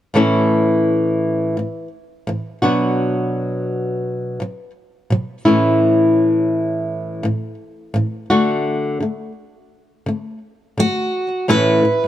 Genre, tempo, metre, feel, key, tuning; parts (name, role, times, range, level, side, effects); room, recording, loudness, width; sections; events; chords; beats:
acoustic pop; 85 BPM; 4/4; swing 60% on 16ths; A major; A4 = 440 Hz
flamenco guitar; accompaniment; 0.1-12.1 s; A2 to F#4; -16 LUFS; left 1 dB
picked steel-string acoustic guitar; melody; 10.8-12.1 s; F#4 to B4; -18 LUFS; right 2 dB
light reverb; dark, warm production; -16 LUFS; side -12 dB against mid
0.1-11.5 A section
0.1 A; 2.6 Bm; 5.5 A; 8.3 D; 11.5 A
| 0.14 0.85 1.56 2.27 | 2.98 3.69 4.40 5.11 | 5.82 6.53 7.24 7.95 | 8.66 9.37 10.07 10.78 | 11.49